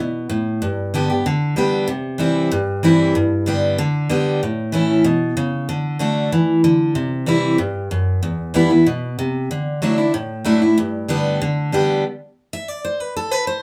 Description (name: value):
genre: bluegrass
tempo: 189 BPM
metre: 4/4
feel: straight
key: G major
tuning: A4 = 440 Hz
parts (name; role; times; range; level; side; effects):
- picked steel-string acoustic guitar; solo; 0.0-13.6 s; E2 to E5; -19 LUFS; equal; none
room: moderate small room reverb, RT60 0.5 s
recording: none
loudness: -19 LUFS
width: mono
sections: 0.0-1.9 A section; 1.9-12.0 A section; 12.0-13.6 B section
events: steel-string acoustic guitar solo 12.0-13.6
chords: 0.0 N.C.; 0.6 G; 1.9 C; 3.2 G; 4.4 A; 5.7 D; 7.0 C; 8.2 Em; 9.5 Dadd9; 10.8 G; 12.0 N.C.